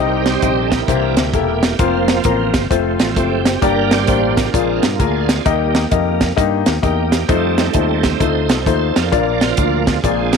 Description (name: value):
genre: uptempo gospel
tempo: 131 BPM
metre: 4/4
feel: swing 64% on 8ths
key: Bb major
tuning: A4 = 440 Hz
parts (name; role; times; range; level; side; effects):
- warm grand piano; accompaniment; 0.0-10.4 s; G2 to Eb5; -18 LUFS; left 13 dB; none
- bright tonewheel organ; sustained chords; 0.0-10.4 s; E3 to Eb5; -20 LUFS; right 15 dB; slow rotary speaker, chorus vibrato
- modern bright fingered electric bass; bass; 0.0-10.4 s; E1 to G2; -21 LUFS; right 2 dB; none
- tight funk drum kit; drums; 0.3-10.4 s; hi-hat, kick drum, snare drum; -17 LUFS; right 2 dB; none
room: light reverb, small room ambience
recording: 1960s-style stereo with parts hard left and right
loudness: -13 LUFS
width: side -5 dB against mid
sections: 0.0-10.4 A section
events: tonewheel organ solo 0.0-10.4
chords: 0.0 Cm; 0.9 C7; 1.8 Fsus4; 2.7 F; 3.6 Gm; 4.5 Bb7; 5.5 Eb; 7.3 F7; 9.1 Bb